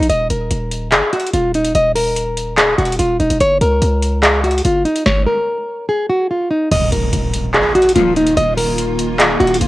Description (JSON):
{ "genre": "hip hop, trap", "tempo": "145 BPM", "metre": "4/4", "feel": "half-time", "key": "Eb minor", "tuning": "A4 = 443 Hz", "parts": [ { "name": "flamenco guitar", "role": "melody", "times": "0.0-9.7 s", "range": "Eb4 to Eb5", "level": "-16 LUFS", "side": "equal", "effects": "cassette tape" }, { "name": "hard-hitting 808-style bass", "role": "bass", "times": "0.0-9.7 s", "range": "Eb1 to Db2", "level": "-19 LUFS", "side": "equal", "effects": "none" }, { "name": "booming analog drum machine", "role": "drums", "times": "0.0-9.7 s", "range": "crash cymbal, handclaps, hi-hat, kick drum, snare drum", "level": "-18 LUFS", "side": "equal", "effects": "cassette tape" }, { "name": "granular cloud pad", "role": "sustained chords", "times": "7.4-9.7 s", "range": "Eb3 to F4", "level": "-22 LUFS", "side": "left 1 dB", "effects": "built-in reverb, cassette tape" }, { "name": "impact", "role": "sound effects", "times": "6.7-8.4 s", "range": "none", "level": "-23 LUFS", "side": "equal", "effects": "none" }, { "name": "rich symphonic string section", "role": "stabs", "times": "8.0-8.3 s", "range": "Bb2 to F3", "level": "-21 LUFS", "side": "left 8 dB", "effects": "cassette tape" } ], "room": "moderate booth ambience, RT60 0.1 s", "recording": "home recording on cassette", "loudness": "-13 LUFS", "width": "side -17 dB against mid", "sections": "0.0-6.7 A section; 6.7-9.7 B section", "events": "stop 5.1-6.7; impact 6.7-8.4", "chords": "0.1 Eb5; 3.4 Gb; 5.1 N.C.; 6.7 Ebsus2", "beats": "| 0.09 0.51 0.92 1.34 | 1.75 2.16 2.58 2.99 | 3.40 3.82 4.23 4.65 | 5.06 5.47 5.89 6.30 | 6.71 7.13 7.54 7.96 | 8.37 8.78 9.20 9.61" }